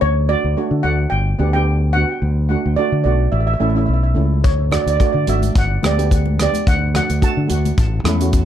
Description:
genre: calypso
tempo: 108 BPM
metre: 4/4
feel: swing 53% on 16ths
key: D major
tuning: A4 = 440 Hz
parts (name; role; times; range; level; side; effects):
- steel pan; melody; 0.0-8.4 s; C#5 to A5; -22 LUFS; right 3 dB; ping-pong delay
- steel pan; accompaniment; 0.0-8.4 s; A3 to G4; -23 LUFS; right 3 dB; none
- fingered electric bass; bass; 0.0-8.4 s; G1 to D3; -17 LUFS; left 1 dB; none
- modern studio drum kit; drums; 4.4-8.4 s; hi-hat, kick drum, rim click; -19 LUFS; left 1 dB; none
- congas; percussion; 4.7-8.2 s; none; -27 LUFS; left 6 dB; none
room: light reverb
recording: dark, warm production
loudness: -15 LUFS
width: side -10 dB against mid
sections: 0.0-8.4 A section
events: none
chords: 0.0 D; 1.1 Gmaj7; 2.2 D; 3.3 A; 4.4 D; 5.6 G; 6.7 D; 7.8 A

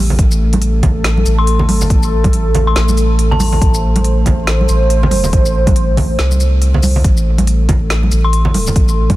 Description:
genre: deep dubstep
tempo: 140 BPM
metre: 4/4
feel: swing 59% on 16ths, half-time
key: A minor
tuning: A4 = 445 Hz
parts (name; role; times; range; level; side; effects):
- dark analog pad; sustained chords; 0.0-9.2 s; A3 to C5; -20 LUFS; right 1 dB; chorus, phaser
- soft dub sub bass; bass; 0.0-9.2 s; A1 to C2; -13 LUFS; equal; none
- congas; percussion; 0.1-9.2 s; none; -20 LUFS; right 2 dB; dub echo
- deep house drum kit; drums; 0.2-9.2 s; hi-hat, shaker, snare drum; -22 LUFS; left 1 dB; studio reverb
- electronic kick drum; drums; 0.2-9.2 s; none; -14 LUFS; equal; studio reverb
- dark detuned synth bell; melody; 1.4-3.9, 8.2-8.5 s; A5 to C6; -23 LUFS; left 4 dB; chorus, vintage 12-bit sampler grit, dub echo
room: little or no reverb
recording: dense, heavily limited modern master, vinyl crackle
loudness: -10 LUFS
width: side -16 dB against mid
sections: 0.0-9.2 A section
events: none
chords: 0.0 Am

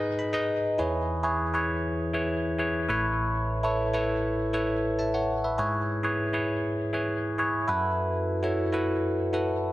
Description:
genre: pop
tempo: 100 BPM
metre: 4/4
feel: straight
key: unclear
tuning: A4 = 440 Hz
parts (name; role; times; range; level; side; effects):
- bell-like tine electric piano; solo; 0.0-9.7 s; A1 to B5; -25 LUFS; equal; phaser, digital delay
room: moderate lush hall reverb, RT60 2.7 s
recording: none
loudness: -25 LUFS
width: side -16 dB against mid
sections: 0.8-9.7 A section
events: tine electric piano fill 0.0-0.8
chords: 0.0 G#m; 0.8 E6; 2.9 Aadd9; 5.6 E6/G#; 7.7 B7sus4/F#

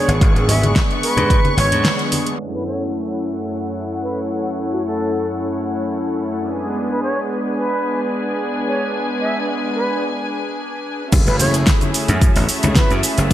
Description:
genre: nu-disco, nu disco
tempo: 110 BPM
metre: 4/4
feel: straight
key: F# minor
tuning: A4 = 440 Hz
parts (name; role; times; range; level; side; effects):
- concert flute; melody; 0.0-12.9 s; F#4 to E5; -24 LUFS; equal; ping-pong delay
- warm analog pad; accompaniment; 0.0-13.3 s; F#2 to A4; -23 LUFS; equal; chorus, sidechain pumping, ping-pong delay
- warm studio string section; sustained chords; 0.0-13.3 s; A3 to C#6; -25 LUFS; left 1 dB; sidechain pumping
- slap bass; bass; 0.1-1.8, 11.1-13.3 s; F#1 to G#2; -18 LUFS; equal; none
- pop drum kit; drums; 0.1-2.5, 11.1-13.3 s; crash cymbal, hi-hat, shaker, snare drum; -21 LUFS; equal; studio reverb, gated reverb
- electronic kick drum; drums; 0.2-1.4, 11.1-13.3 s; none; -15 LUFS; equal; studio reverb
- congas and cabasa; percussion; 0.5-2.2, 11.1-13.3 s; none; -25 LUFS; left 1 dB; none
room: light reverb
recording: bright 1980s-style digital production, low-pass filter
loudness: -16 LUFS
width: side -12 dB against mid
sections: 0.0-2.4 A section; 2.4-11.1 B section; 11.1-13.3 C section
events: break 1.9-2.4, 10.0-11.1; band accent 1.9; filter sweep 2.4-11.1; drop 11.1-13.3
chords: 0.0 G#dim; 2.4 F#m7; 6.5 G#dim; 11.1 F#m7

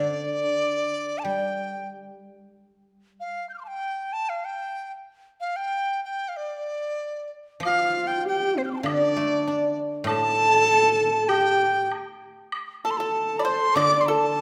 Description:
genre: chinese traditional, Chinese chamber ensemble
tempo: 96 BPM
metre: 2/4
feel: rubato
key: D yu mode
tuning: A4 = 440 Hz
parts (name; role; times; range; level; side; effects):
- breathy mellow dizi; melody; 0.0-14.4 s; C5 to G6; -26 LUFS; equal; none
- guzheng; accompaniment; 0.0-3.2, 7.6-14.4 s; A2 to D4; -32 LUFS; equal; none
- dark horsehead fiddle; second line; 7.6-14.4 s; C4 to D5; -28 LUFS; equal; none
- woodblock; percussion; 7.6-13.9 s; none; -37 LUFS; equal; none
- pipa; second line; 12.8-14.4 s; A4 to D5; -30 LUFS; equal; none
room: wet recital hall reverb, RT60 1.7 s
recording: none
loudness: -24 LUFS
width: mono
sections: 0.0-7.6 A section; 7.6-14.4 B section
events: none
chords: none

